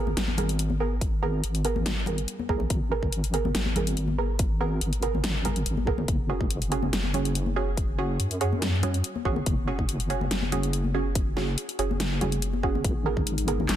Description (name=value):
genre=deep dubstep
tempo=142 BPM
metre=4/4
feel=half-time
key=G# minor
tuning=A4 = 439 Hz
part: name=filtered dub chord stab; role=stabs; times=0.0-13.6 s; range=B3 to A#4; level=-31 LUFS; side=right 5 dB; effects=chorus, dub echo
part: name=deep soft wobble bass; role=bass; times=0.0-13.8 s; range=F#1 to F#2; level=-28 LUFS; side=equal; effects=chorus
part: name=congas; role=percussion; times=0.1-13.7 s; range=none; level=-34 LUFS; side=left 6 dB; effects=dub echo
part: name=dubstep drum kit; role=drums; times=0.2-13.8 s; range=handclaps, hi-hat, snare drum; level=-31 LUFS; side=left 1 dB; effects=none
part: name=electronic kick drum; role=drums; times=1.0-13.2 s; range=none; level=-28 LUFS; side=equal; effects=none
part: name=dark analog pad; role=sustained chords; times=12.8-13.8 s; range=G#3 to D#4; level=-34 LUFS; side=left 3 dB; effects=wide subtle chorus
room=light reverb, digital ambience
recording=dense, heavily limited modern master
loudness=-24 LUFS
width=side -11 dB against mid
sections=0.0-13.8 A section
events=none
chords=0.0 G#madd9; 6.1 F#sus2; 12.8 G#madd9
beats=0.17 0.59 | 1.01 1.44 1.86 2.28 | 2.70 3.13 3.55 3.97 | 4.39 4.82 5.24 5.66 | 6.08 6.51 6.93 7.35 | 7.78 8.20 8.62 9.04 | 9.46 9.89 10.31 10.73 | 11.15 11.58 12.00 12.42 | 12.85 13.27 13.69